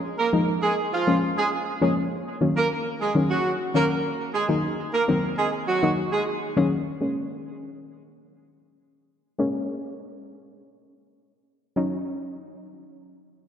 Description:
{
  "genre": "pop",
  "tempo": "101 BPM",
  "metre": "4/4",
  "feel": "straight",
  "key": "Bb minor",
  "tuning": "A4 = 439 Hz",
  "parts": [
    { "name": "soft round pluck", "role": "accompaniment", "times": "0.0-13.5 s", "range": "Eb3 to Eb4", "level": "-25 LUFS", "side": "left 2 dB", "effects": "chorus, low-pass filter" },
    { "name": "warm horn section", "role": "melody", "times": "0.2-6.2 s", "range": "F3 to Bb4", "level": "-25 LUFS", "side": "right 2 dB", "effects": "tape echo" }
  ],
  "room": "wet lush hall reverb, RT60 2.6 s",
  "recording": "dreamy mix soaked in reverb",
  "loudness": "-22 LUFS",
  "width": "side -8 dB against mid",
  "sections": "0.0-7.0 A section; 7.0-13.5 B section",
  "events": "drop 0.0-7.0; filter sweep on synth pluck 7.0-13.5",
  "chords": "0.0 Bbm7; 2.3 Ebm7; 7.0 Bbm7; 11.8 Ebm7"
}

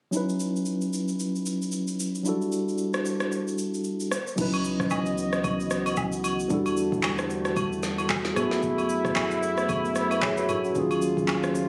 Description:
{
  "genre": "amapiano",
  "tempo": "113 BPM",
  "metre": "4/4",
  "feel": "swing 58% on 16ths",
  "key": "unclear",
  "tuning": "A4 = 440 Hz",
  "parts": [
    { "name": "tine electric piano", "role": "accompaniment", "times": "0.1-11.7 s", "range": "F#3 to E5", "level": "-29 LUFS", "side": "equal", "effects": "none" },
    { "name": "smooth R&B drum kit", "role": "drums", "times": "0.1-11.7 s", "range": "crash cymbal, handclaps, kick drum, rim click, shaker, snare drum, toms", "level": "-34 LUFS", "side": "equal", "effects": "vintage 12-bit sampler grit" },
    { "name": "warm brass ensemble", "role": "sustained chords", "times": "4.4-11.7 s", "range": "A2 to D#5", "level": "-33 LUFS", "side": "equal", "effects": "sidechain pumping" },
    { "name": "sub bass with octave", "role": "bass", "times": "4.4-11.7 s", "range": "C#2 to F#2", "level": "-39 LUFS", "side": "equal", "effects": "none" },
    { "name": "agogo bells and woodblock", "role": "percussion", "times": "4.5-11.4 s", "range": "none", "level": "-36 LUFS", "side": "equal", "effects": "none" }
  ],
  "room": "light reverb",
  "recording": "recorded on a phone in the room, club ambience, compression",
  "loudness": "-27 LUFS",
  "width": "mono",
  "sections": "0.1-4.4 A section; 4.4-11.7 B section",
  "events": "none",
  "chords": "0.1 C#m11; 2.3 Em11; 4.1 N.C.; 4.4 C#m11; 6.5 Em11; 8.4 F#m11; 10.8 D#m11"
}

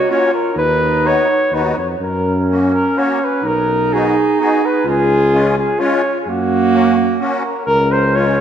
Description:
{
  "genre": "alpine folk, alpine dance band",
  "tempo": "127 BPM",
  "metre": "3/4",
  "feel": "straight",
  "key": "F# major",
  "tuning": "A4 = 440 Hz",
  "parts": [
    { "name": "mellow flugelhorn", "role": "melody", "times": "0.0-8.4 s", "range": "F#4 to C#5", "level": "-16 LUFS", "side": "left 1 dB", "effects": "tape echo" },
    { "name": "mellow clarinet", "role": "second line", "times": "0.0-8.4 s", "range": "A#3 to E#4", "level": "-18 LUFS", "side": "right 4 dB", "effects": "none" },
    { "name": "mellow tuba", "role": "bass", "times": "0.0-8.4 s", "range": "B1 to F#2", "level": "-20 LUFS", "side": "left 1 dB", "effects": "none" },
    { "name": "musette accordion", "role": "accompaniment", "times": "0.1-8.4 s", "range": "G#3 to F#4", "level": "-22 LUFS", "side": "left 2 dB", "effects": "none" }
  ],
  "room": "wet concert hall reverb, RT60 1.7 s",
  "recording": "none",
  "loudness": "-13 LUFS",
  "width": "side -9 dB against mid",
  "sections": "0.0-7.7 A section",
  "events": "none",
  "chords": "0.0 F#; 0.6 B/D#; 2.0 F#; 3.4 B; 4.9 C#; 6.3 F#; 7.7 Db6"
}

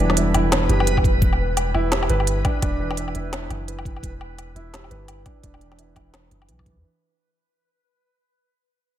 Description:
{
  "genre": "half-time drum and bass",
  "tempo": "171 BPM",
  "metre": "4/4",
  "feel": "swing 60% on 16ths, half-time",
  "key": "E minor",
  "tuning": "A4 = 440 Hz",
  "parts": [
    { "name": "dark analog pad", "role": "sustained chords", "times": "0.0-6.9 s", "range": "G3 to A5", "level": "-29 LUFS", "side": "left 2 dB", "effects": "chorus, sidechain pumping" },
    { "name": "felt-muted upright piano", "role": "arpeggios", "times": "0.0-6.9 s", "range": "E3 to B4", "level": "-27 LUFS", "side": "right 4 dB", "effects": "low-pass filter, dub echo" },
    { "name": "long sustained 808-style bass", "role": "bass", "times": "0.0-6.8 s", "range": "D1 to E2", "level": "-24 LUFS", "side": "equal", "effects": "none" },
    { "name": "backwards swelling texture", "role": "texture", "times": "0.0-6.8 s", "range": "B4", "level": "-31 LUFS", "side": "equal", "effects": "built-in reverb" },
    { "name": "organic electronic drum kit", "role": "drums", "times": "0.1-6.7 s", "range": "hi-hat, snare drum, woodblock", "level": "-25 LUFS", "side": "left 1 dB", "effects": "none" },
    { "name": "electronic kick drum", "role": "drums", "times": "1.0-6.7 s", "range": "none", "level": "-21 LUFS", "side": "equal", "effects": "overdrive" }
  ],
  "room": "little or no reverb",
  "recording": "none",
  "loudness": "-18 LUFS",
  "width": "side -11 dB against mid",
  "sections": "0.0-6.8 A section",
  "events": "fade-out 0.0-6.8; filter sweep on felt piano 0.0-6.8",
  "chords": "0.0 Emadd9"
}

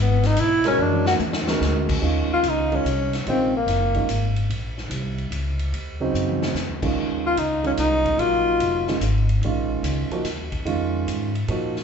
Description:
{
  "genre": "modal jazz",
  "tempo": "146 BPM",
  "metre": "3/4",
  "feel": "swing 66% on 8ths",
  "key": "Eb dorian",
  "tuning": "A4 = 440 Hz",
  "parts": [
    { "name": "breathy tenor saxophone", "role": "melody", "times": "0.0-4.3, 7.3-9.0 s", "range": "Bb3 to F#4", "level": "-21 LUFS", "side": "left 2 dB", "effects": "none" },
    { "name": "upright bass", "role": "bass", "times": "0.0-11.8 s", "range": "F1 to Bb2", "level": "-24 LUFS", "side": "equal", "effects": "none" },
    { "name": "swinging big-band drum kit", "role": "drums", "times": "0.2-11.8 s", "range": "crash cymbal, hi-hat, kick drum, ride cymbal, snare drum, toms", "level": "-30 LUFS", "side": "left 1 dB", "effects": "none" },
    { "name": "warm grand piano", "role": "accompaniment", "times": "0.6-11.7 s", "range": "Db3 to A#4", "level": "-26 LUFS", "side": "right 4 dB", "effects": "none" }
  ],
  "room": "moderate large studio reverb, RT60 1.5 s",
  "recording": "band playing live in one room, nothing above 8.0 kHz",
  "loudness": "-20 LUFS",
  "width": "side -6 dB against mid",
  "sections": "0.0-2.0 A section; 2.0-11.8 B section",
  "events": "tenor saxophone solo 0.0-2.0; drum fill 0.8-1.6, 6.1-6.6",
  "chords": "0.0 C#m7; 0.8 A#7alt; 2.0 Ebm9; 7.0 Bbm"
}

